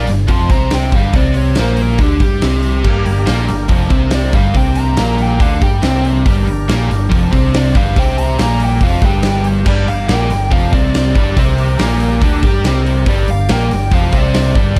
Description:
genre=blues rock power trio and southern rock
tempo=141 BPM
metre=4/4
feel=straight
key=G minor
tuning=A4 = 440 Hz
part: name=dark smooth lead guitar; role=second line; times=0.0-14.8 s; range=G4 to C6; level=-25 LUFS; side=equal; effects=overdrive, plate reverb
part: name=overdriven electric guitar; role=riff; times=0.0-14.8 s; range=F2 to G4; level=-20 LUFS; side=equal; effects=none
part: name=picked electric bass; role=bass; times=0.0-14.8 s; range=F1 to G2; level=-18 LUFS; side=equal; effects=none
part: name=big rock drum kit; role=drums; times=0.1-14.8 s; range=crash cymbal, hi-hat, kick drum, snare drum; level=-18 LUFS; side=equal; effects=none
part: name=overdriven tonewheel organ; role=sustained chords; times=2.9-14.8 s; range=Bb3 to D5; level=-29 LUFS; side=equal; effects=lush chorus, plate reverb
room=light reverb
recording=none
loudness=-14 LUFS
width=mono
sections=0.0-14.8 A section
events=lead electric guitar solo 0.0-14.8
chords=0.0 Gm

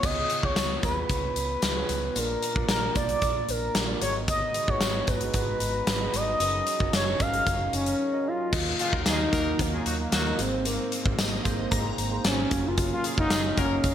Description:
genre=1980s-style pop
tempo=113 BPM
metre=4/4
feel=straight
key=Eb minor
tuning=A4 = 441 Hz
part: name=expressive synth lead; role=melody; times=0.0-13.9 s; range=Bb3 to F5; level=-28 LUFS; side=left 1 dB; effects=chorus, digital delay
part: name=tine electric piano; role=accompaniment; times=0.0-13.9 s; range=Ab2 to Eb5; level=-34 LUFS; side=right 5 dB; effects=analog chorus
part: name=vintage muted fingered electric bass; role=bass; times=0.0-13.9 s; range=Gb1 to Eb2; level=-33 LUFS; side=equal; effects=none
part: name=big rock drum kit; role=drums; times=0.0-13.9 s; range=crash cymbal, hi-hat, kick drum, snare drum, tambourine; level=-28 LUFS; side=equal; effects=gated reverb
part: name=tambourine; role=percussion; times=0.0-13.7 s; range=none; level=-43 LUFS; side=left 4 dB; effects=none
part: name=brassy analog pad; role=sustained chords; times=4.3-13.9 s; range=Eb3 to Bb5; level=-37 LUFS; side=equal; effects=chorus
part: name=clear horn section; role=stabs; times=8.8-13.8 s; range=Gb3 to Bb4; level=-34 LUFS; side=left 2 dB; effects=none
part: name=shimmering bell with halo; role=second line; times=11.2-12.1 s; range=Eb5 to Bb5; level=-37 LUFS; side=left 2 dB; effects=ensemble chorus, phaser, digital delay
room=moderate plate reverb, RT60 2.1 s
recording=bright 1980s-style digital production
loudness=-24 LUFS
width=side -10 dB against mid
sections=0.0-8.5 A section; 8.5-13.9 B section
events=none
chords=0.0 Db7; 2.2 Bb; 4.0 Abm7; 6.4 Gb6; 8.5 Ebmadd9; 10.4 Abadd9; 12.5 Gbmaj7

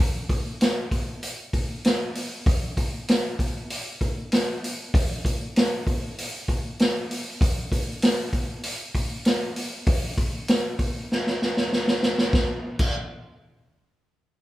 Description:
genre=rock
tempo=97 BPM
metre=4/4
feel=straight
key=none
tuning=none
part: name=vintage drum kit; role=drums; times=0.3-12.9 s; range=crash cymbal, hi-hat, kick drum, snare drum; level=-23 LUFS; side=equal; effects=none
room=light reverb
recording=band playing live in one room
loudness=-23 LUFS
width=side -16 dB against mid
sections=0.0-12.3 A section; 12.3-14.4 B section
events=drum fill 11.1-12.3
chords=none

